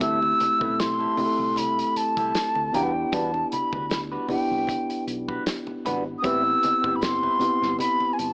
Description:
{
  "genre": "lush 1970s-style soul",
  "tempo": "77 BPM",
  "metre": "4/4",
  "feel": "swing 54% on 16ths",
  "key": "E minor",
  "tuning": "A4 = 440 Hz",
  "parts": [
    { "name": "mellow hollow silver concert flute", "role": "melody", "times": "0.0-8.3 s", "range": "G5 to E6", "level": "-23 LUFS", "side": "equal", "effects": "none" },
    { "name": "tine electric piano", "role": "accompaniment", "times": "0.0-8.3 s", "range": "A3 to A4", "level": "-27 LUFS", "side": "equal", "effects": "none" },
    { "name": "clean electric guitar", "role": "riff", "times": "0.0-8.0 s", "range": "G3 to C5", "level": "-32 LUFS", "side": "right 1 dB", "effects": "wah" },
    { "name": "hollow-body short-scale fingered electric bass", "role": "bass", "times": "0.0-8.3 s", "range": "F#1 to E2", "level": "-38 LUFS", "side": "equal", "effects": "none" },
    { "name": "warm soul drum kit", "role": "drums", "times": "0.0-8.3 s", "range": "hi-hat, kick drum, snare drum", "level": "-31 LUFS", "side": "equal", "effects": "none" },
    { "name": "congas", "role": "percussion", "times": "0.0-8.2 s", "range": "none", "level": "-38 LUFS", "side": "equal", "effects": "none" },
    { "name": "tambourine", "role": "percussion", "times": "0.8-7.2 s", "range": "none", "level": "-44 LUFS", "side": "left 2 dB", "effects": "none" }
  ],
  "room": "light reverb, small room ambience",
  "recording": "AM radio sound",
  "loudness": "-21 LUFS",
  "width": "side -29 dB against mid",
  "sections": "0.0-8.3 A section",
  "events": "none",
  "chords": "0.0 D9sus4; 2.7 Em9; 6.2 Am9"
}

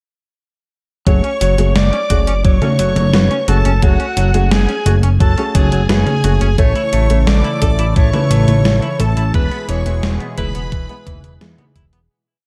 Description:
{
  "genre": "synthwave",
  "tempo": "87 BPM",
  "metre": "4/4",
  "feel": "straight",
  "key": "F# minor",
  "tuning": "A4 = 441 Hz",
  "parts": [
    { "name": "breathy alto saxophone", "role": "melody", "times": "1.1-11.7 s", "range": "F#4 to D5", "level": "-23 LUFS", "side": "equal", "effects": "delay" },
    { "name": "string machine, violins", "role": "second line", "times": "1.1-11.7 s", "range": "F#5 to D6", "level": "-31 LUFS", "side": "equal", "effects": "ensemble chorus, tape echo" },
    { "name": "semi-hollow electric guitar", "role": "riff", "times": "1.1-12.0 s", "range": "E3 to A4", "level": "-28 LUFS", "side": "equal", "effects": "lush chorus, vintage 12-bit sampler grit, low-pass filter, delay" },
    { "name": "warm baby grand piano", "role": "stabs", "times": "1.1-11.6 s", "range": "G#3 to C#5", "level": "-27 LUFS", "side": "equal", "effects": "vintage 12-bit sampler grit" },
    { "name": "fat analog bass", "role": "bass", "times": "1.1-12.1 s", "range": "E1 to E2", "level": "-17 LUFS", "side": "equal", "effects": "none" },
    { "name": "electronic kick drum", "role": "drums", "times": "1.1-11.9 s", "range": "none", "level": "-17 LUFS", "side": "equal", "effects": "none" },
    { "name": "gated 80s digital drum machine", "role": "drums", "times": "1.1-12.1 s", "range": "hi-hat, snare drum, toms", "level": "-21 LUFS", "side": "equal", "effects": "gated reverb, gated reverb snare" },
    { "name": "warm analog pad", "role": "sustained chords", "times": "6.6-12.1 s", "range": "B2 to A4", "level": "-26 LUFS", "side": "equal", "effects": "chorus, sidechain pumping" }
  ],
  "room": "little or no reverb",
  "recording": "none",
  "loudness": "-14 LUFS",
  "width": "mono",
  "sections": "1.1-12.1 verse",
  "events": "fade-out 8.4-12.1",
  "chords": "1.1 F#madd9; 6.6 A; 9.3 E"
}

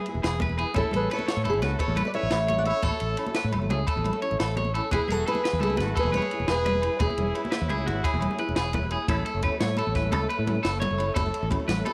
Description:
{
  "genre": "highlife guitar band",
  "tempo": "115 BPM (dotted quarters)",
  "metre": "12/8",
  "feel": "straight",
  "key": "A major",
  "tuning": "A4 = 438 Hz",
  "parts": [
    { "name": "percussive tonewheel organ", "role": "sustained chords", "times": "0.0-11.9 s", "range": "G#4 to E5", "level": "-40 LUFS", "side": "equal", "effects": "slow rotary speaker, chorus vibrato" },
    { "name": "electric guitar at the edge of break-up", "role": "arpeggios", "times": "0.0-11.9 s", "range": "F#4 to C#5", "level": "-34 LUFS", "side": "equal", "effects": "tape echo" },
    { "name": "nylon-string guitar", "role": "accompaniment", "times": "0.1-11.6 s", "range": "B3 to A4", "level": "-40 LUFS", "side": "equal", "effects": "none" },
    { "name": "fingered electric bass", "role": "bass", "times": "0.1-11.8 s", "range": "E1 to A2", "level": "-31 LUFS", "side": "equal", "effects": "none" },
    { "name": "compact cocktail drum kit", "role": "drums", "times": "0.1-11.9 s", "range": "kick drum, ride cymbal, snare drum", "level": "-34 LUFS", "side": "equal", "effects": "none" },
    { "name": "congas", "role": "percussion", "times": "0.1-11.9 s", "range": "none", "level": "-36 LUFS", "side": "equal", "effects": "none" },
    { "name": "agogo bells", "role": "percussion", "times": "0.2-11.9 s", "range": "none", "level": "-39 LUFS", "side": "equal", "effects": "none" },
    { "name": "fingerpicked steel-string acoustic guitar", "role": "melody", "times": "0.8-8.7 s", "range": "G#4 to F#5", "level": "-31 LUFS", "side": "equal", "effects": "none" },
    { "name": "brilliant trumpet", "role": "second line", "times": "0.8-8.7 s", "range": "E4 to D5", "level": "-38 LUFS", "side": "equal", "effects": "none" }
  ],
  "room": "light reverb, small room reverb",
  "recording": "none",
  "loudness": "-26 LUFS",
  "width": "mono",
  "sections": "0.0-9.1 A section; 9.1-11.9 B section",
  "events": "none",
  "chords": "0.0 E; 0.8 A; 4.9 E; 9.1 A"
}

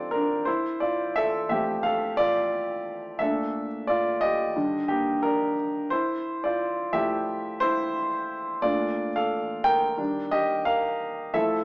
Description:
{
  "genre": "soul",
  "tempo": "88 BPM",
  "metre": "4/4",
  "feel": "swing 54% on 16ths",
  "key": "F major",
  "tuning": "A4 = 440 Hz",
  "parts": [
    { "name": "warm baby grand piano", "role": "solo", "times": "0.0-11.6 s", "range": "Bb2 to G5", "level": "-23 LUFS", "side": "equal", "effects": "none" }
  ],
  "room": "moderate large studio reverb, RT60 1.2 s",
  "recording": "band playing live in one room, small speaker sound",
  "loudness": "-23 LUFS",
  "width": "side -24 dB against mid",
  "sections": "0.0-11.6 A section",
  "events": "grand piano solo 0.0-11.6",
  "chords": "0.5 Fmaj7; 3.2 Bbmaj7; 4.6 Ebmaj7; 5.9 Fmaj7; 8.6 Bbmaj7; 10.0 Ebmaj9"
}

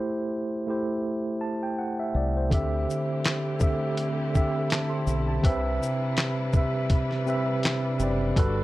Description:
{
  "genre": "lo-fi hip hop",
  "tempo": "82 BPM",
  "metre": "4/4",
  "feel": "swing 55% on 16ths",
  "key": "unclear",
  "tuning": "A4 = 442 Hz",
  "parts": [
    { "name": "mellow tine electric piano", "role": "accompaniment", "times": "0.0-8.6 s", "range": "C3 to C6", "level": "-26 LUFS", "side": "right 1 dB", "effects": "fast stereo tremolo, cassette tape, low-pass filter" },
    { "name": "deep dub fingered electric bass", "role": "bass", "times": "2.1-8.6 s", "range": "F#1 to D2", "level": "-28 LUFS", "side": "left 1 dB", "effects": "none" },
    { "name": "bright studio string section", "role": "sustained chords", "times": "2.5-8.6 s", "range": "C3 to D5", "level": "-36 LUFS", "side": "left 2 dB", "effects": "low-pass filter" },
    { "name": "dusty soul sampler-style drum kit", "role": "drums", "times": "2.5-8.6 s", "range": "handclaps, hi-hat, kick drum, shaker, snare drum", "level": "-24 LUFS", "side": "left 1 dB", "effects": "none" }
  ],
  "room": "light reverb",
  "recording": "cassette tape",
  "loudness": "-24 LUFS",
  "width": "side -17 dB against mid",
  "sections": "0.0-8.6 A section",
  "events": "none",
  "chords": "0.0 Am7; 2.5 D9sus4; 5.4 Cmaj7"
}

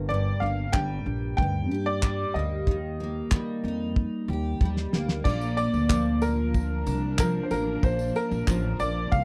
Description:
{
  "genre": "acoustic pop",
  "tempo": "93 BPM",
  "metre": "4/4",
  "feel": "straight",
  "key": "Bb major",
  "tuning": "A4 = 440 Hz",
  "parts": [
    { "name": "picked steel-string acoustic guitar", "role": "accompaniment", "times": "0.0-9.2 s", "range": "G2 to Bb4", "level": "-32 LUFS", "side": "equal", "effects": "double-tracked" },
    { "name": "upright bass", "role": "bass", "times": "0.0-9.2 s", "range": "G1 to Eb3", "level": "-32 LUFS", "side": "equal", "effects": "none" },
    { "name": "bright upright piano", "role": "melody", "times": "0.1-9.2 s", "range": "Bb4 to G5", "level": "-33 LUFS", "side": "equal", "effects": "none" },
    { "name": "cloth-damped thuddy drum kit", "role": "drums", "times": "0.7-9.2 s", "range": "crash cymbal, handclaps, kick drum, snare drum, tambourine", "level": "-27 LUFS", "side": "equal", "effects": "none" },
    { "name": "warm studio string section", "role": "sustained chords", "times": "5.3-9.2 s", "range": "F3 to Bb4", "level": "-39 LUFS", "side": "equal", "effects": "none" },
    { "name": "tambourine", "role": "percussion", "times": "5.3-9.2 s", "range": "none", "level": "-52 LUFS", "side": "equal", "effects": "none" }
  ],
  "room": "little or no reverb",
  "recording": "dry, close 1970s-style studio recording",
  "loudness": "-27 LUFS",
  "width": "mono",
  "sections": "0.0-5.3 A section; 5.3-9.2 B section",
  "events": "drum fill 4.6-5.3",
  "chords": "0.0 Gm; 2.7 Eb; 5.3 Bb"
}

